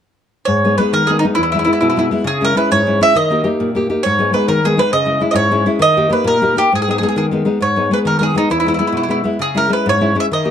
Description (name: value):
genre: italian folk, Italian serenade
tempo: 134 BPM (dotted quarters)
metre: 6/8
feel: straight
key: G# harmonic minor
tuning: A4 = 441 Hz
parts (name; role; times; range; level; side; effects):
- bowl-back mandolin; melody; 0.5-10.5 s; D#4 to E5; -15 LUFS; right 1 dB; none
- nylon-string guitar; accompaniment; 0.5-10.5 s; E2 to G4; -16 LUFS; left 2 dB; none
room: light reverb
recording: dark, warm production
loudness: -13 LUFS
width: side -8 dB against mid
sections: 0.5-7.6 A section; 7.6-10.5 A section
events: none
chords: 0.5 G#m; 1.4 E; 2.3 C#m; 3.2 D#; 4.0 G#m; 4.9 C#m; 5.8 D#; 6.7 G#m; 8.5 E; 9.4 C#m